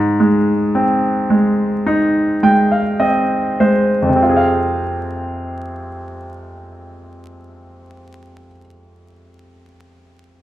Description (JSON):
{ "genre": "pop", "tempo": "50-55 BPM", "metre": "4/4", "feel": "straight", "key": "F minor", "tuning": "A4 = 440 Hz", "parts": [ { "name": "clear concert grand piano", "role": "solo", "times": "0.0-10.4 s", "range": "F2 to G5", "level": "-14 LUFS", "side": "equal", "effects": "none" } ], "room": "wet large studio reverb, RT60 1.2 s", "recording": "band playing live in one room, vinyl crackle", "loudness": "-13 LUFS", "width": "side -13 dB against mid", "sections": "0.0-4.2 A section; 4.2-9.0 B section", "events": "slowing down 0.0-4.2; grand piano fill 1.9-4.2", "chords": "0.0 Ab; 4.2 Fm", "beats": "0.75 1.87 3.02 | 4.20 5.40 6.61 7.81" }